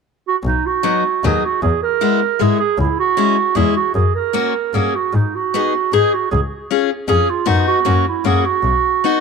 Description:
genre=alpine folk, alpine dance band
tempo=154 BPM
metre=3/4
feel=straight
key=B major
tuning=A4 = 440 Hz
part: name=dark clarinet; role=melody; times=0.3-9.2 s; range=D#4 to A#4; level=-17 LUFS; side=right 9 dB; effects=none
part: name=rich double bass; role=bass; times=0.4-8.7 s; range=B1 to G#2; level=-18 LUFS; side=left 2 dB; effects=none
part: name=picked steel-string acoustic guitar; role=accompaniment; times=0.8-9.2 s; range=F#3 to G#4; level=-18 LUFS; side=left 14 dB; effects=none
room=moderate spring reverb, RT60 2.3 s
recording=1960s-style stereo with parts hard left and right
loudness=-14 LUFS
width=side -5 dB against mid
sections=0.4-9.2 A section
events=none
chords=0.4 B; 1.6 E; 2.8 C#m; 4.0 F#; 5.1 G#m; 6.3 C#; 7.5 B; 7.9 F#; 8.6 B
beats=0.06 | 0.45 0.84 1.24 | 1.62 2.01 2.40 | 2.78 3.17 3.56 | 3.95 4.34 4.74 | 5.14 5.53 5.93 | 6.32 6.71 7.10 | 7.48 7.87 8.26 | 8.64 9.03

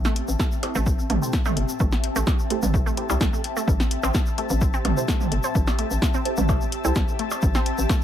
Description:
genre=minimal techno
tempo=128 BPM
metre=4/4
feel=straight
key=A minor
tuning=A4 = 440 Hz
part: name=hollow knocking FM bass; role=bass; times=0.0-7.9 s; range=G1 to C2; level=-25 LUFS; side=equal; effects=sidechain pumping
part: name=punchy analog drum machine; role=drums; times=0.0-8.0 s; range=hi-hat, snare drum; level=-28 LUFS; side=equal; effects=overdrive
part: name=egg shaker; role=percussion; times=0.0-8.0 s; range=none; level=-36 LUFS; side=left 3 dB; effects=none
part: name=ethereal airy pad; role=texture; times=0.0-8.0 s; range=C4 to A5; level=-30 LUFS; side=left 2 dB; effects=ensemble chorus, built-in reverb, sidechain pumping
part: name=swarming drone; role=texture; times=0.0-8.0 s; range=C4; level=-38 LUFS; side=left 2 dB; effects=none
part: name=resonant blip pluck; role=riff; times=0.1-7.9 s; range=G3 to C4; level=-31 LUFS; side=right 3 dB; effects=chorus, phaser, sidechain pumping, ping-pong delay
part: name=electronic kick drum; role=drums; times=0.4-8.0 s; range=none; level=-23 LUFS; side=equal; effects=overdrive
part: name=filtered dub chord stab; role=stabs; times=0.6-6.9 s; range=E4 to C5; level=-33 LUFS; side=right 4 dB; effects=phaser, analog chorus, dub echo
part: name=electronic percussion blips and toms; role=percussion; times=0.6-7.4 s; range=none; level=-29 LUFS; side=right 3 dB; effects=dub echo
room=little or no reverb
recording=none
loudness=-20 LUFS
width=side -10 dB against mid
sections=0.0-8.0 A section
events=none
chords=0.0 Am7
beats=0.40 0.86 1.33 | 1.80 2.27 2.74 3.21 | 3.68 4.14 4.61 5.08 | 5.55 6.02 6.49 6.96 | 7.43 7.89

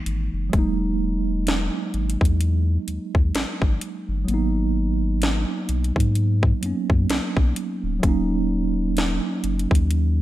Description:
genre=contemporary R&B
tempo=64 BPM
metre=4/4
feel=swing 58% on 16ths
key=unclear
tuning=A4 = 440 Hz
part: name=mellow tine electric piano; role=accompaniment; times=0.0-10.2 s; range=E3 to D#4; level=-25 LUFS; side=right 3 dB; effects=medium stereo tremolo
part: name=saturated sub bass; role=bass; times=0.1-10.2 s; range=D1 to G#2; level=-23 LUFS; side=left 1 dB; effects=none
part: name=trap drum kit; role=drums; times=0.1-10.2 s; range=hi-hat, kick drum, snare drum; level=-22 LUFS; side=left 1 dB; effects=gated reverb
room=light reverb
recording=bright 1980s-style digital production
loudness=-20 LUFS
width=side -14 dB against mid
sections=0.5-10.2 A section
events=none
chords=0.0 F#13; 0.5 Emaj9#11; 4.3 G#m9; 8.0 D#m7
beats=| 0.53 1.47 2.41 3.35 | 4.28 5.22 6.16 7.10 | 8.03 8.97 9.91

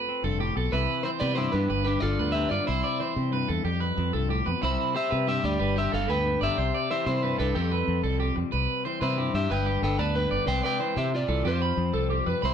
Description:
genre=highlife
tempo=123 BPM (dotted quarters)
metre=12/8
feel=straight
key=C major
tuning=A4 = 440 Hz
part: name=clean electric guitar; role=accompaniment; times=0.0-12.5 s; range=F2 to F4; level=-32 LUFS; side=left 6 dB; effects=none
part: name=electric guitar at the edge of break-up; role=arpeggios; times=0.0-12.5 s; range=G4 to B5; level=-30 LUFS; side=right 3 dB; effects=none
part: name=fingered electric bass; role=bass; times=0.2-12.5 s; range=F1 to C3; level=-28 LUFS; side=equal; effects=none
part: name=electric guitar at the edge of break-up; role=melody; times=0.7-12.5 s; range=C4 to A5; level=-29 LUFS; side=equal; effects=none
room=moderate studio reverb, RT60 0.7 s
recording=band playing live in one room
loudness=-24 LUFS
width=side -8 dB against mid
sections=0.7-12.5 A section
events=none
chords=0.0 F; 0.7 Cmaj7; 1.7 Gadd9; 2.7 Cmaj7; 3.6 Fadd9; 4.6 Cmaj7; 5.6 Gadd9; 6.6 Cmaj7; 7.5 Fadd9; 8.5 Cmaj7; 9.5 Gadd9; 10.5 Cmaj7; 11.4 Fadd9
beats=0.24 | 0.72 1.21 1.70 2.19 | 2.67 3.16 3.65 4.14 | 4.62 5.11 5.60 6.09 | 6.58 7.06 7.55 8.04 | 8.52 9.01 9.50 9.99 | 10.47 10.96 11.45 11.94 | 12.42

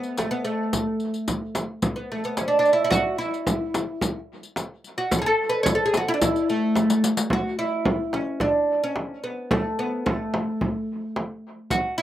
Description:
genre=Arabic maqam ensemble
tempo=109 BPM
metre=4/4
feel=straight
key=A maqam ajam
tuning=A4 = 440 Hz
part: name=oud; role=melody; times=0.0-12.0 s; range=A3 to C#5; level=-23 LUFS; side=equal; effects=none
part: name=riq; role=percussion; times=0.0-7.3, 11.7-11.8 s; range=none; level=-31 LUFS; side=left 4 dB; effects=none
part: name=frame drum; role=percussion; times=0.2-11.8 s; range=none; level=-26 LUFS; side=right 1 dB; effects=none
room=little or no reverb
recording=recorded outdoors, with no room sound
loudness=-22 LUFS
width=side -12 dB against mid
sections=0.0-7.3 A section; 7.3-12.0 B section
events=drum fill 6.8-7.3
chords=none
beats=0.18 | 0.73 1.28 1.82 2.37 | 2.92 3.47 4.02 4.57 | 5.12 5.66 6.21 6.76 | 7.31 7.86 8.41 8.96 | 9.51 10.06 10.61 11.16 | 11.71

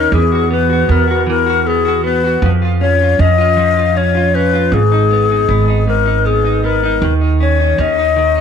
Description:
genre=six-eight pop ballad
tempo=52 BPM (dotted quarters)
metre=6/8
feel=straight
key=unclear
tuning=A4 = 444 Hz
part: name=breathy alto flute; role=melody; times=0.0-8.4 s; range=Ab4 to Eb5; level=-14 LUFS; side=left 8 dB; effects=none
part: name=direct-recorded clean electric guitar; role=accompaniment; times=0.0-8.4 s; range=Ab2 to F#4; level=-18 LUFS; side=right 2 dB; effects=double-tracked left and right
part: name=upright bass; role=bass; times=0.0-8.4 s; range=Ab1 to F2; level=-15 LUFS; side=right 3 dB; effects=none
room=light reverb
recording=none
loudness=-11 LUFS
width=side -7 dB against mid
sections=0.0-8.4 A section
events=none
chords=0.1 Esus2; 2.4 Db/F; 4.7 Abm; 7.0 Bbmadd11/Eb (rootless)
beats=| 0.12 1.27 | 2.42 3.57 | 4.72 5.87 | 7.02 8.17

